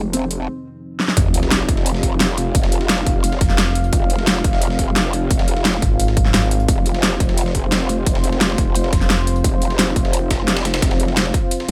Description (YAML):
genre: dark technical drum and bass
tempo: 174 BPM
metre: 4/4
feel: straight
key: unclear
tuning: A4 = 439 Hz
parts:
  - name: dark analog pad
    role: sustained chords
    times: 0.0-11.7 s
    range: F3 to F5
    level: -28 LUFS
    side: equal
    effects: chorus, sidechain pumping
  - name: growl bass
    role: bass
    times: 0.0-11.7 s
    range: F1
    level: -23 LUFS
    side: equal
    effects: chorus, tube saturation
  - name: dubstep drum kit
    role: drums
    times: 0.1-11.7 s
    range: hi-hat, snare drum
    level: -22 LUFS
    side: equal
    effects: studio reverb
  - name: breakbeat sampler-style drum kit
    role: drums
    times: 1.2-11.7 s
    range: hi-hat, snare drum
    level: -31 LUFS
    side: equal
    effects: high-pass filter on hats, studio reverb, high-pass filter on snare
  - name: electronic kick drum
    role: drums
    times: 1.2-11.4 s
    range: none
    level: -21 LUFS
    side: equal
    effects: studio reverb
  - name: sub drop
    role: sound effects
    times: 1.2-2.5 s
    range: none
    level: -27 LUFS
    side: equal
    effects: none
  - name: growling FM bass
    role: bass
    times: 3.4-6.7, 8.9-9.4 s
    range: F1 to Ab1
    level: -21 LUFS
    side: equal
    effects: none
room: little or no reverb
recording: none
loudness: -18 LUFS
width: mono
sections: 0.0-1.2 A section; 1.2-11.7 B section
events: break 0.5-1.2, 11.5; drum fill 1.0; drop 1.2-11.7; impact 1.2-2.5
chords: 0.0 F5